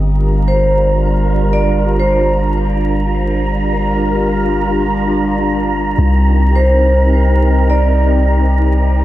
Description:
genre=drum and bass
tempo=free time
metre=none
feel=none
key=G minor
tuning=A4 = 444 Hz
part: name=soft string machine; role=sustained chords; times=0.0-9.0 s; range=G3 to Bb4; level=-17 LUFS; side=equal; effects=phaser, ensemble chorus
part: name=long sustained 808-style bass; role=bass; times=0.0-9.0 s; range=G1 to C2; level=-14 LUFS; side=equal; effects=none
part: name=wind-like tuned noise texture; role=texture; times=0.2-9.0 s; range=Bb5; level=-22 LUFS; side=right 3 dB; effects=built-in reverb
part: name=vibraphone with medium mallets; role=melody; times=0.5-2.3, 6.6-8.2 s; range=C5 to D5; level=-19 LUFS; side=right 1 dB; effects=vintage 12-bit sampler grit, dub echo
room=light reverb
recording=vinyl crackle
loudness=-11 LUFS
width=side -14 dB against mid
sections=0.0-9.0 A section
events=none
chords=0.0 Gm7; 6.0 Cm7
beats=free time

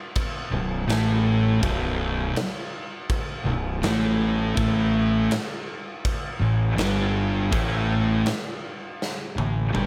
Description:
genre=stoner and doom metal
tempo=81 BPM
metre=4/4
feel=straight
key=unclear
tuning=A4 = 440 Hz
part: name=big rock drum kit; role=drums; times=0.2-9.9 s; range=crash cymbal, kick drum, snare drum, toms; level=-31 LUFS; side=equal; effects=none
part: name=thick fuzz guitar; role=riff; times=0.5-9.9 s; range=B1 to A3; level=-28 LUFS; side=equal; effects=distortion
part: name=thick fuzz guitar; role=riff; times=0.5-9.9 s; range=B1 to A3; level=-29 LUFS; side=equal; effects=distortion
part: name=fuzz fingered electric bass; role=bass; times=0.5-9.9 s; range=B0 to A1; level=-29 LUFS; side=equal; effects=overdrive
room=light reverb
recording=none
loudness=-24 LUFS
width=mono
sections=0.0-9.9 A section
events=drum fill 9.0-9.9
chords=0.0 Asus2/B; 4.6 Gsus2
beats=0.14 0.88 | 1.61 2.35 3.09 3.82 | 4.56 5.30 6.04 6.77 | 7.51 8.25 8.99 9.73

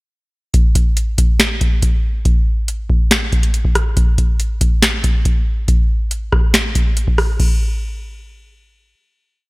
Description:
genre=hip hop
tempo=140 BPM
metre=4/4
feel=half-time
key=none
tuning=none
part: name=booming analog drum machine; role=drums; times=0.5-7.5 s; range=crash cymbal, finger snaps, hi-hat, kick drum, rim click, snare drum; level=-13 LUFS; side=equal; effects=none
room=little or no reverb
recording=none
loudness=-13 LUFS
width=side -24 dB against mid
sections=0.5-7.4 hook; 7.4-9.5 final hit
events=none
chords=none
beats=| 0.54 0.97 1.40 1.82 | 2.25 2.68 3.11 3.54 | 3.97 4.40 4.83 5.25 | 5.68 6.11 6.54 6.97 | 7.40

